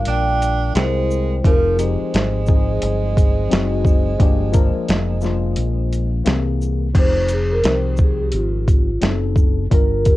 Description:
hip hop, jazz-hop; 87 BPM; 4/4; swing 61% on 16ths; F dorian; A4 = 438 Hz
vibraphone with soft mallets; melody; 0.0-10.2 s; F4 to G5; -23 LUFS; right 1 dB; cassette tape, tape echo
breathy tenor saxophone; second line; 0.0-6.2 s; F3 to D4; -26 LUFS; right 6 dB; cassette tape
tine electric piano; accompaniment; 0.0-10.2 s; E3 to Bb4; -25 LUFS; left 8 dB; phaser, cassette tape
deep dub fingered electric bass; bass; 0.0-10.2 s; F1 to C2; -21 LUFS; equal
boom bap sampler-style drum kit; drums; 0.1-10.2 s; crash cymbal, hi-hat, kick drum, shaker, snare drum; -16 LUFS; equal; cassette tape
light reverb; home recording on cassette; -15 LUFS; side -17 dB against mid
0.0-7.0 A section; 7.0-10.2 B section
vibraphone solo 7.0-10.2
0.0 Gm7; 0.8 C7b13; 1.4 Fm7; 3.5 Ab7/Gb; 4.2 Gm7; 6.3 C7b13; 7.0 Fm7; 9.0 F#dim7
0.06 0.75 | 1.44 2.13 2.82 3.51 | 4.20 4.89 5.58 6.27 | 6.96 7.65 8.34 9.03 | 9.72

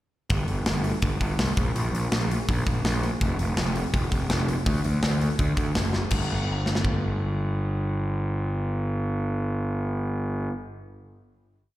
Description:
punk rock; 165 BPM; 4/4; straight; A4 = 441 Hz
fuzz picked electric bass; bass; 0.3-10.5 s; F1 to D2; -25 LUFS; equal; overdrive
tight metal drum kit; drums; 0.3-6.9 s; crash cymbal, hi-hat, kick drum, snare drum; -27 LUFS; equal
little or no reverb; live gig heard through the venue's PA, recital hall reverb; -23 LUFS; side -15 dB against mid
0.3-6.1 verse; 6.1-9.0 final note
drum fill 5.9
| 0.30 0.67 1.03 1.39 | 1.75 2.11 2.48 2.84 | 3.20 3.57 3.93 4.30 | 4.66 5.02 5.39 5.75 | 6.12 6.48 6.84 7.21 | 7.57 7.93 8.29 8.65

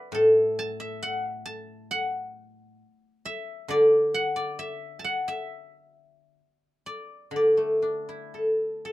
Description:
chinese traditional, Chinese solo plucked strings; 57-69 BPM; 4/4; rubato; D gong mode; A4 = 441 Hz
guzheng; solo; 0.0-8.9 s; A2 to D6; -23 LUFS; equal
light reverb; minimal, uncompressed stereo recording; -23 LUFS; side -16 dB against mid
0.0-8.9 A section
0.13 1.02 | 1.92 2.81 3.69 4.59 | 5.50 6.39 7.33 8.34

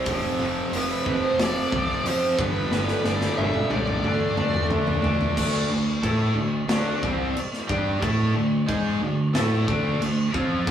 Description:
hard rock; 91 BPM; 4/4; straight; A4 = 440 Hz
airy breathy pad; sustained chords; 0.0-10.7 s; F3 to E5; -36 LUFS; equal
cranked stack guitar; riff; 0.0-10.7 s; F2 to A4; -28 LUFS; right 3 dB; overdrive
overdriven semi-hollow guitar; riff; 0.0-10.7 s; F2 to A4; -31 LUFS; left 4 dB
scooped high-gain guitar; riff; 0.0-10.7 s; F2 to A4; -32 LUFS; equal; distortion
modern bright fingered electric bass; bass; 0.1-10.7 s; F1 to A2; -26 LUFS; equal
big rock drum kit; drums; 0.1-10.7 s; crash cymbal, hi-hat, kick drum, snare drum, toms; -28 LUFS; equal
bluesy overdriven lead guitar; melody; 0.8-4.7 s; B4 to E5; -28 LUFS; right 2 dB; distortion
wet small room reverb, RT60 0.5 s; rough rehearsal-room recording, small room ambience; -21 LUFS; side -9 dB against mid
0.0-5.4 A section; 5.4-10.7 B section
drum fill 2.7-5.4
0.1 F5; 2.4 G; 4.0 D5
| 0.06 0.72 1.39 2.05 | 2.71 3.37 4.04 4.70 | 5.36 6.02 6.68 7.35 | 8.01 8.67 9.34 10.00 | 10.66

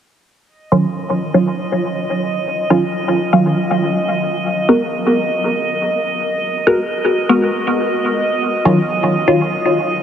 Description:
techno; 121 BPM; 4/4; straight; Eb minor; A4 = 440 Hz
drifting glass-harmonics texture; texture; 1.1-10.0 s; Eb5; -21 LUFS; right 2 dB; chorus, built-in reverb
filtered dub chord stab; stabs; 0.7-9.4 s; Eb3 to Bb4; -15 LUFS; equal; phaser, cassette tape, dub echo
wet huge ambient reverb, RT60 8.1 s; heavily compressed radio sound, multiband compression; -14 LUFS; side -9 dB against mid
0.5-10.0 A section
filter sweep on synth stab 0.5-10.0
0.5 Ebm9; 4.4 N.C.; 8.4 Ebm9
| 0.47 0.97 1.46 1.96 | 2.46 2.95 3.45 3.94 | 4.44 4.93 5.43 5.93 | 6.42 6.92 7.41 7.91 | 8.40 8.90 9.40 9.89

